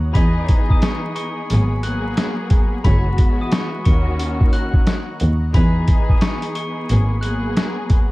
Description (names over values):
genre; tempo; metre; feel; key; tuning
hip hop, boom-bap hip-hop; 89 BPM; 4/4; swing 63% on 16ths; G# minor; A4 = 440 Hz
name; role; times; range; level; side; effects
lush unison pad; sustained chords; 0.0-8.1 s; F#4 to D#6; -36 LUFS; right 2 dB; chorus, phaser, high-pass filter, low-pass filter
warm double bass; bass; 0.0-7.5 s; F#1 to E2; -18 LUFS; equal; none
glockenspiel with soft plastic mallets; melody; 0.1-7.5 s; B5 to F#7; -30 LUFS; left 2 dB; high-pass filter, low-pass filter, ping-pong delay
dark studio string section; accompaniment; 0.1-8.1 s; D#3 to G#4; -25 LUFS; left 1 dB; cassette tape, high-pass filter, low-pass filter
clear horn section; stabs; 0.1-5.8 s; E4 to D#5; -36 LUFS; right 1 dB; high-pass filter, low-pass filter, ping-pong delay
boom bap sampler-style drum kit; drums; 0.1-8.1 s; hi-hat, kick drum, snare drum; -16 LUFS; equal; none
room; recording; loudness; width
small room ambience; dark, warm production, vinyl crackle; -16 LUFS; side -20 dB against mid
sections
0.0-8.1 A section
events
none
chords
0.2 Emaj7; 1.5 G#m9; 2.8 F#9sus4; 3.9 D#m7; 5.5 Emaj7; 6.9 G#m9